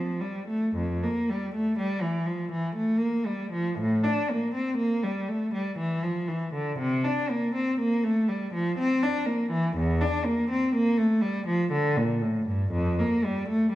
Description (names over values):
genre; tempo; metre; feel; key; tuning
classical, baroque-style suite movement for unaccompanied cello; 60 BPM; 3/4; rubato; F major; A4 = 440 Hz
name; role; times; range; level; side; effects
rich cello; solo; 0.0-13.8 s; E2 to D4; -24 LUFS; equal; none
room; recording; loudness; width
wet recital hall reverb, RT60 1.6 s; recorded in a church or concert hall; -24 LUFS; side -14 dB against mid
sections
0.7-13.8 A section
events
none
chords
none